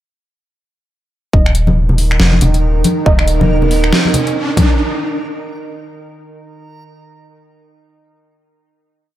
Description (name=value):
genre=deep dubstep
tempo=139 BPM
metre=4/4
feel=swing 60% on 16ths, half-time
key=unclear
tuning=A4 = 436 Hz
part: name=bowed-like drone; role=sustained chords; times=1.8-4.8 s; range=Eb3 to Eb4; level=-22 LUFS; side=right 4 dB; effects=built-in reverb
part: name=filtered dub chord stab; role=stabs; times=1.3-3.2 s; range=Bb3 to Eb5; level=-22 LUFS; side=right 4 dB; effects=phaser, lush chorus, dub echo
part: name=soft dub sub bass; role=bass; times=1.3-3.9 s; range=Eb1 to F1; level=-14 LUFS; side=equal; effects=none
part: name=electronic kick drum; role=drums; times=1.3-4.7 s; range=none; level=-12 LUFS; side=equal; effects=overdrive
part: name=riser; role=sound effects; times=2.9-4.8 s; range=none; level=-22 LUFS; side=equal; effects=none
part: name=backwards swelling texture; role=texture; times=2.6-4.8 s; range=Bb4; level=-27 LUFS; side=right 5 dB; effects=built-in reverb
part: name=dubstep drum kit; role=drums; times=1.5-4.7 s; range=finger snaps, hi-hat, snare drum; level=-17 LUFS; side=equal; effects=overdrive
part: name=congas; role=percussion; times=1.7-4.7 s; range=none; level=-17 LUFS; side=left 2 dB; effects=none
room=light reverb, digital ambience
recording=none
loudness=-11 LUFS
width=side -13 dB against mid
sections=1.3-4.8 build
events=build-up 1.3-4.8; filter sweep on synth stab 1.3-4.8; riser 2.9-4.8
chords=1.3 Eb5